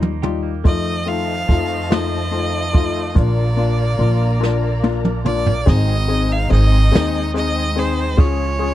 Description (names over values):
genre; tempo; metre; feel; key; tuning
six-eight pop ballad; 48 BPM (dotted quarters); 6/8; straight; unclear; A4 = 438 Hz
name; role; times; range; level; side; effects
felt-muted upright piano; accompaniment; 0.0-8.7 s; G3 to Ab4; -23 LUFS; left 9 dB; none
direct-recorded clean electric guitar; arpeggios; 0.0-8.7 s; Eb3 to G4; -33 LUFS; right 14 dB; phaser
upright bass; bass; 0.0-8.7 s; Ab1 to F2; -19 LUFS; right 1 dB; none
jazz brush drum kit; drums; 0.0-8.7 s; crash cymbal, hi-hat, kick drum, ride cymbal, snare drum, toms; -17 LUFS; right 1 dB; none
bright violin; melody; 0.7-8.7 s; C5 to F5; -24 LUFS; right 1 dB; none
warm studio string section; sustained chords; 0.7-8.7 s; Ab3 to Bb5; -29 LUFS; equal; none
room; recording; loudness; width
little or no reverb; dry, close 1970s-style studio recording; -15 LUFS; side -13 dB against mid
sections
0.0-5.7 A section; 5.7-8.7 B section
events
drum fill 0.0-0.6, 4.4-5.7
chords
0.0 Ebadd9; 0.6 F7; 3.2 Bb; 5.7 Ab; 8.2 Db